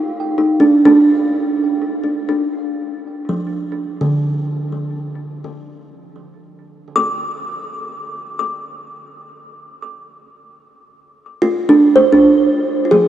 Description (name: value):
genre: ambient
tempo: free time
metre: none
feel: none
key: unclear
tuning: A4 = 440 Hz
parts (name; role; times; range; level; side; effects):
- kalimba; solo; 0.0-13.1 s; D3 to D6; -14 LUFS; right 1 dB; ping-pong delay
room: wet huge ambient reverb, RT60 8.6 s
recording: worn, warbling old tape, cassette tape, warbly pitch drift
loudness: -13 LUFS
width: side -12 dB against mid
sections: 0.0-13.1 A section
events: none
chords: 0.0 Dm